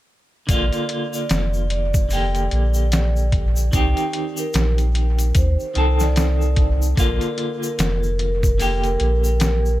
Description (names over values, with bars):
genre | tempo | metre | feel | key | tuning
trip hop | 74 BPM | 4/4 | swing 59% on 16ths | unclear | A4 = 441 Hz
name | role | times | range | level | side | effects
vibraphone with soft mallets | melody | 0.5-9.8 s | Bb4 to D5 | -28 LUFS | equal | tape echo
clean electric guitar | accompaniment | 0.5-9.8 s | D3 to A4 | -25 LUFS | right 1 dB | tremolo, tape echo
soft dub sub bass | bass | 0.5-9.8 s | F1 to Eb2 | -19 LUFS | equal | tube saturation
trip hop sampler-style drum kit | drums | 0.5-9.6 s | hi-hat, kick drum, snare drum | -21 LUFS | equal | none
tube shaker | percussion | 0.5-9.8 s | none | -34 LUFS | left 3 dB | none
room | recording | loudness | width
digital ambience | echo-heavy mix | -17 LUFS | side -15 dB against mid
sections
0.5-9.8 A section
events
none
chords
0.5 Bb; 3.7 Cm; 7.0 Bb